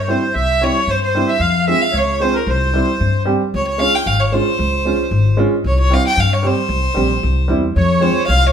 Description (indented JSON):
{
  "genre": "klezmer",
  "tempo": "113 BPM",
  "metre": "2/4",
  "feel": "straight",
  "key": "C phrygian dominant",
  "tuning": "A4 = 440 Hz",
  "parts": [
    { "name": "clear violin", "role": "melody", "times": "0.0-8.5 s", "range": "Bb4 to G5", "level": "-18 LUFS", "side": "equal", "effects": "none" },
    { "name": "accordion", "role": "second line", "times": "0.0-3.2, 7.8-8.5 s", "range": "Bb4 to F5", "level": "-21 LUFS", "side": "right 1 dB", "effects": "none" },
    { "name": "upright bass", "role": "bass", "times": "0.0-8.5 s", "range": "Ab1 to G2", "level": "-18 LUFS", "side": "left 1 dB", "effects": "none" },
    { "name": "clear upright piano", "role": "accompaniment", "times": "0.1-8.2 s", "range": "G3 to G4", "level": "-20 LUFS", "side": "right 2 dB", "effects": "none" }
  ],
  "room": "moderate large studio reverb, RT60 1.1 s",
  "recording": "band playing live in one room",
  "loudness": "-14 LUFS",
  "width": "side -8 dB against mid",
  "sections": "0.0-3.5 A section; 3.5-8.5 B section",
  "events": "none",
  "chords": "0.0 C; 1.4 Fm; 2.5 C5; 3.5 Db; 5.7 C; 7.8 Fm",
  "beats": "| 0.35 0.88 | 1.42 1.95 | 2.48 3.01 | 3.54 4.07 | 4.59 5.12 | 5.65 6.18 | 6.71 7.24 | 7.76 8.29"
}